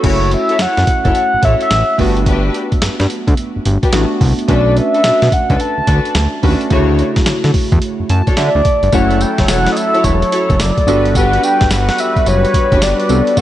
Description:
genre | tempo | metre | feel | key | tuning
R&B, new jack swing | 108 BPM | 4/4 | swing 64% on 16ths | F# phrygian | A4 = 437 Hz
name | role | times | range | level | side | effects
warm analog keys | accompaniment | 0.0-13.4 s | C#3 to A5 | -19 LUFS | right 1 dB | chorus
warm studio string section | stabs | 0.0-13.4 s | D4 to C#5 | -22 LUFS | left 3 dB | tape echo
fat analog bass | bass | 0.0-13.4 s | E1 to D3 | -15 LUFS | equal | none
boom bap sampler-style drum kit | drums | 0.0-13.4 s | crash cymbal, hi-hat, kick drum, snare drum, tambourine | -16 LUFS | equal | none
mellow horn-like synth lead | melody | 0.1-13.4 s | C#5 to A5 | -15 LUFS | equal | chorus
brassy analog pad | sustained chords | 8.9-13.4 s | F#3 to B4 | -20 LUFS | right 1 dB | chorus
room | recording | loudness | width
light reverb | nothing above 10.7 kHz | -11 LUFS | side -13 dB against mid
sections
0.0-8.9 A section; 8.9-13.4 B section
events
synth keys fill 7.8-8.9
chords
0.0 F#m7; 2.0 Gmaj7; 4.5 Bm7; 6.7 Dmaj7; 8.9 F#m7; 10.9 Gmaj7

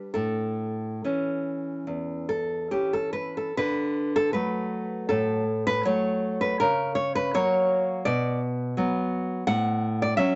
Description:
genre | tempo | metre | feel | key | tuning
romantic piece for solo classical guitar | 67-86 BPM | 4/4 | rubato | D major | A4 = 440 Hz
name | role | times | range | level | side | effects
nylon-string guitar | solo | 0.0-10.4 s | E2 to F#5 | -26 LUFS | equal | none
room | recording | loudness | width
moderate small room reverb, RT60 0.6 s | nothing above 7.9 kHz | -27 LUFS | mono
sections
0.0-3.5 A section; 3.5-10.4 A section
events
none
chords
0.2 A; 3.5 D; 6.6 F#/C#; 8.1 B5; 9.5 F#m/A

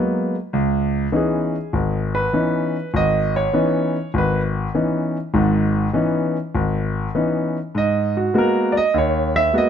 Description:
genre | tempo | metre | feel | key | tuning
solo jazz | 100 BPM | 4/4 | swing 66% on 8ths | unclear | A4 = 440 Hz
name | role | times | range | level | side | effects
clear concert grand piano | solo | 0.0-9.7 s | G#1 to E5 | -18 LUFS | equal | none
room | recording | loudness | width
light reverb | dark, warm production | -18 LUFS | side -8 dB against mid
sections
0.0-9.7 A section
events
grand piano solo 0.0-9.7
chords
0.0 G#m9; 0.5 C#m9; 7.7 G#m9

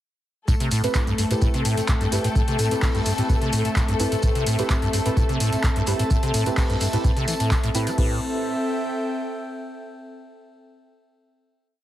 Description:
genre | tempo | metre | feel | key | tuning
acid house | 128 BPM | 4/4 | straight | A minor | A4 = 439 Hz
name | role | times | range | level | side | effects
rich studio string section | sustained chords | 0.5-8.0 s | A3 to A4 | -29 LUFS | left 3 dB | sidechain pumping
acid bass, saw | riff | 0.5-8.2 s | G2 to A3 | -25 LUFS | equal | tube saturation, wide subtle chorus, sidechain pumping
cloth-damped thuddy drum kit | drums | 0.5-7.9 s | hi-hat, shaker, snare drum | -38 LUFS | equal | none
electro analog drum machine | drums | 0.5-8.1 s | crash cymbal, handclaps, hi-hat, tambourine | -30 LUFS | equal | none
electronic kick drum | drums | 0.5-8.1 s | none | -22 LUFS | equal | none
airy breathy pad | texture | 0.5-9.8 s | C4 to A5 | -29 LUFS | equal | chorus, sidechain pumping
deep mellow chord stab | stabs | 0.8-8.2 s | C4 to B4 | -30 LUFS | right 2 dB | chorus, phaser, ping-pong delay
room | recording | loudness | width
light reverb | heavily compressed radio sound | -20 LUFS | side -13 dB against mid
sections
0.5-8.0 drop; 8.0-9.9 final chord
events
drop 0.5-8.0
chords
0.5 Am7

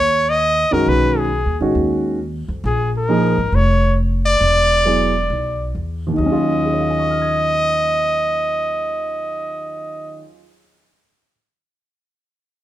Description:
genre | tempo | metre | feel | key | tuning
jazz, small-group swing and bop | 135 BPM | 4/4 | swing 65% on 8ths | Eb minor | A4 = 441 Hz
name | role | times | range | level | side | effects
bright trumpet | melody | 0.0-10.3 s | Ab4 to Eb5 | -18 LUFS | equal | none
upright bass | bass | 0.0-10.3 s | E1 to Gb2 | -21 LUFS | equal | none
dark grand piano | accompaniment | 0.7-11.3 s | Eb2 to Ab6 | -20 LUFS | right 1 dB | none
room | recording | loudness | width
light reverb | minimal, uncompressed stereo recording | -15 LUFS | side -13 dB against mid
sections
0.0-6.2 A section; 6.2-9.7 B section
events
none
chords
0.0 Ab5; 0.9 B; 2.6 Bb7sus4; 4.4 E7; 6.2 Ebm9

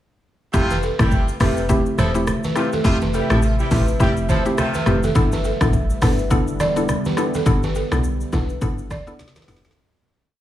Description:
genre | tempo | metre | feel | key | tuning
afrobeats | 104 BPM | 4/4 | swing 58% on 16ths | G mixolydian | A4 = 440 Hz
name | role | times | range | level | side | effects
warm horn section | second line | 0.5-5.0 s | C3 to A4 | -26 LUFS | equal | digital delay
mallet-like synth pluck | accompaniment | 0.5-9.7 s | A3 to A4 | -23 LUFS | left 1 dB | chorus
deep dark ambient pad | sustained chords | 1.4-9.7 s | C3 to E5 | -28 LUFS | equal | chorus, built-in reverb
deep log drum bass | bass | 0.5-9.7 s | E1 to B1 | -21 LUFS | equal | none
afro-pop drum kit | drums | 0.5-9.8 s | hi-hat, kick drum, rim click, shaker, snare drum | -24 LUFS | equal | none
balafon | riff | 0.7-9.7 s | A4 to D5 | -27 LUFS | right 1 dB | digital delay
congas | percussion | 0.7-9.8 s | none | -28 LUFS | right 1 dB | none
room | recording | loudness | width
digital ambience | studio reverb | -17 LUFS | side -12 dB against mid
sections
0.5-9.8 chorus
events
fade-out 7.5-9.8; drum fill 9.2-9.8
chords
0.5 Fmaj7; 5.2 G6

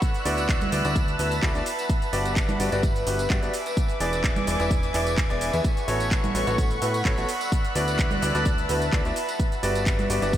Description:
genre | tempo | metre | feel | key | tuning
piano house | 128 BPM | 4/4 | swing 53% on 16ths | unclear | A4 = 439 Hz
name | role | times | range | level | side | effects
dark studio violin section | sustained chords | 0.0-10.4 s | A4 to F#6 | -31 LUFS | right 1 dB | sidechain pumping
electronic kick drum | drums | 0.0-10.4 s | none | -25 LUFS | equal | none
house drum kit | drums | 0.0-10.4 s | handclaps, hi-hat, shaker | -32 LUFS | right 1 dB | none
tambourine and congas | percussion | 0.0-10.4 s | none | -35 LUFS | right 3 dB | none
airy breathy pad | texture | 0.0-10.4 s | B4 to C#6 | -32 LUFS | right 1 dB | chorus, sidechain pumping
clear grand piano | riff | 0.3-10.3 s | B3 to E5 | -29 LUFS | left 1 dB | sidechain pumping, analog delay
plucky analog bass | bass | 0.3-10.4 s | E1 to A2 | -29 LUFS | equal | sidechain pumping
room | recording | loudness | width
moderate cathedral reverb, RT60 5.1 s | dreamy mix soaked in reverb | -22 LUFS | side -11 dB against mid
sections
0.0-10.4 A section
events
none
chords
0.0 D69; 1.7 Gmaj7; 3.5 E7; 5.6 A69; 7.3 D69; 9.2 Gmaj7

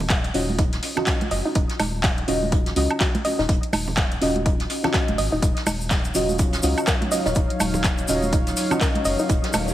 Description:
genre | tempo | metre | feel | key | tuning
deep house | 124 BPM | 4/4 | swing 59% on 16ths | Eb minor | A4 = 440 Hz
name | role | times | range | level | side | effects
round analog bass | bass | 0.0-9.7 s | Eb1 to Db2 | -28 LUFS | equal | tube saturation, sidechain pumping
congas | percussion | 0.0-9.7 s | none | -30 LUFS | right 2 dB | none
deep house drum kit | drums | 0.1-9.7 s | handclaps, hi-hat, woodblock | -27 LUFS | equal | overdrive, studio reverb
electronic kick drum | drums | 0.1-9.4 s | none | -22 LUFS | equal | studio reverb
jazz brush drum kit | drums | 0.1-9.7 s | hi-hat, snare drum | -35 LUFS | right 1 dB | none
deep mellow chord stab | stabs | 0.3-9.7 s | Db4 to Eb5 | -26 LUFS | equal | chorus, phaser, sidechain pumping, digital delay
soft round pluck | arpeggios | 0.6-9.6 s | Eb4 to Eb5 | -28 LUFS | right 1 dB | chorus, sidechain pumping, tape echo
dark analog pad | sustained chords | 6.1-9.7 s | Gb3 to F5 | -28 LUFS | left 1 dB | chorus, sidechain pumping
tube shaker | percussion | 5.4-9.7 s | none | -31 LUFS | left 2 dB | none
riser | sound effects | 9.4-9.7 s | none | -32 LUFS | equal | none
room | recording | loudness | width
light reverb, studio reverb | heavily compressed radio sound, multiband compression | -19 LUFS | side -13 dB against mid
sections
0.0-9.7 A section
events
riser 9.4-9.7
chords
0.0 Ebm9

